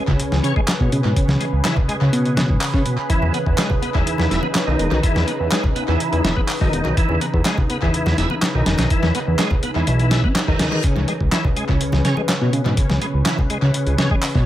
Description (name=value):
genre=breakbeat, breaks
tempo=124 BPM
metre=4/4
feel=straight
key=C# minor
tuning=A4 = 439 Hz
part: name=phased analog pad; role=sustained chords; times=0.0-14.5 s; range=C#3 to B4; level=-25 LUFS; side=equal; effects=phaser, chorus, sidechain pumping
part: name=bright tonewheel organ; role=riff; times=0.0-14.5 s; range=B2 to E4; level=-23 LUFS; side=equal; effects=chorus vibrato, slow rotary speaker, vintage 12-bit sampler grit, low-pass filter, tape echo
part: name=fat analog bass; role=bass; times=0.1-14.4 s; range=E1 to C#3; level=-20 LUFS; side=equal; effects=none
part: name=dusty soul sampler-style drum kit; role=drums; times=0.1-14.5 s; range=hi-hat, kick drum, snare drum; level=-21 LUFS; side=equal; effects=tape echo
part: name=congas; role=percussion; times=0.3-14.1 s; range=none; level=-30 LUFS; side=left 2 dB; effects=none
part: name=electronic handclaps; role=drums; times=0.7-14.3 s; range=none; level=-29 LUFS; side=equal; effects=overdrive, tape echo
part: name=reverse cymbal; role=sound effects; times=10.3-10.8 s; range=none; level=-33 LUFS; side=left 6 dB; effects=none
room=light reverb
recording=echo-heavy mix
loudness=-16 LUFS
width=side -13 dB against mid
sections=0.0-14.5 A section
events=reverse cymbal 10.3-10.8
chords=0.0 C#7(no3); 3.1 Emaj7; 10.8 C#m7